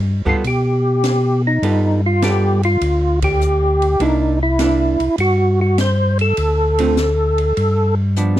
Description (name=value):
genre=soul jazz organ trio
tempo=101 BPM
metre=4/4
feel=swing 69% on 8ths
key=unclear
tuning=A4 = 440 Hz
part: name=mellow tonewheel organ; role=bass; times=0.0-8.4 s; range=C2 to B2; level=-17 LUFS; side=equal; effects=slow rotary speaker
part: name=percussive tonewheel organ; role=melody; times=0.3-7.9 s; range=Eb4 to C5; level=-17 LUFS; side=equal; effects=slow rotary speaker, chorus vibrato
part: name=archtop guitar, miked and amplified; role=accompaniment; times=0.3-8.4 s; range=D3 to A4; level=-20 LUFS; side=right 4 dB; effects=none
part: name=open jazz drum kit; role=drums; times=0.3-8.4 s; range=hi-hat, kick drum, ride cymbal, snare drum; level=-27 LUFS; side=equal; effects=none
room=little or no reverb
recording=dry, close 1970s-style studio recording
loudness=-14 LUFS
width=side -13 dB against mid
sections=0.0-8.4 A section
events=band accent 3.1; drum fill 8.2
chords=0.0 G9; 4.0 C9; 6.4 Dm7; 7.6 G7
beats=0.44 1.03 | 1.63 2.22 2.82 3.41 | 4.00 4.60 5.19 5.79 | 6.38 6.97 7.57 8.16